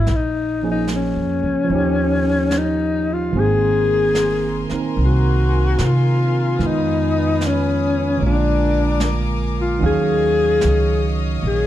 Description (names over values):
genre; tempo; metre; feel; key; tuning
jazz ballad; 74 BPM; 4/4; swing 69% on 8ths; Eb minor; A4 = 441 Hz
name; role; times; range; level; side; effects
breathy alto saxophone; melody; 0.0-11.7 s; Db4 to Ab4; -19 LUFS; left 4 dB; plate reverb
barky tine electric piano; accompaniment; 0.0-11.7 s; D3 to F5; -22 LUFS; right 5 dB; none
upright bass; bass; 0.0-11.7 s; Ab1 to C3; -20 LUFS; equal; none
jazz brush drum kit; drums; 0.1-11.7 s; brushed snare drum, hi-hat, snare drum; -30 LUFS; right 1 dB; none
rich studio string section; sustained chords; 3.3-11.7 s; Bb4 to Eb6; -30 LUFS; left 3 dB; none
room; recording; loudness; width
light reverb; dark, warm production; -16 LUFS; side -12 dB against mid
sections
0.0-11.7 A section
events
none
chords
0.1 Bbm7; 1.7 Eb9; 3.3 Ab69; 6.6 Fm7b5; 8.2 Bb7; 9.8 Ebm9